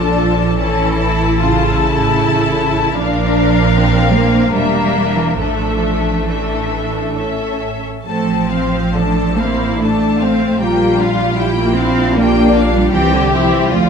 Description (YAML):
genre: classical, slow romantic movement for string orchestra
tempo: 64-80 BPM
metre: 3/4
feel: rubato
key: F major from 8.1 s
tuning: A4 = 440 Hz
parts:
  - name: rich studio violin section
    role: melody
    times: 0.0-13.9 s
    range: D5 to A5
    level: -22 LUFS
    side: left 7 dB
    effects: none
  - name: rich studio violin section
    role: second line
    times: 0.0-13.9 s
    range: A3 to G4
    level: -19 LUFS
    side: left 4 dB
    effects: none
  - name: rich symphonic viola section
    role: accompaniment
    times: 0.0-13.9 s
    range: A3 to C5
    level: -19 LUFS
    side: right 1 dB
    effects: none
  - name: rich studio cello section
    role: bass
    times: 0.0-13.9 s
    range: C#3 to C4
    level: -17 LUFS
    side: right 2 dB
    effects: none
  - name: warm studio double bass section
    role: bass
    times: 0.0-13.9 s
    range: E1 to D2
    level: -20 LUFS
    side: right 3 dB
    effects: none
room: moderate scoring stage reverb, RT60 1.6 s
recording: dark, warm production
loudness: -12 LUFS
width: side -6 dB against mid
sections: 0.0-13.9 A section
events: none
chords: 0.0 Dm; 0.6 A; 3.0 Bb; 4.5 Em7b5; 5.4 Asus4; 7.1 A; 8.1 F/A; 10.6 Gm7/Bb; 12.9 C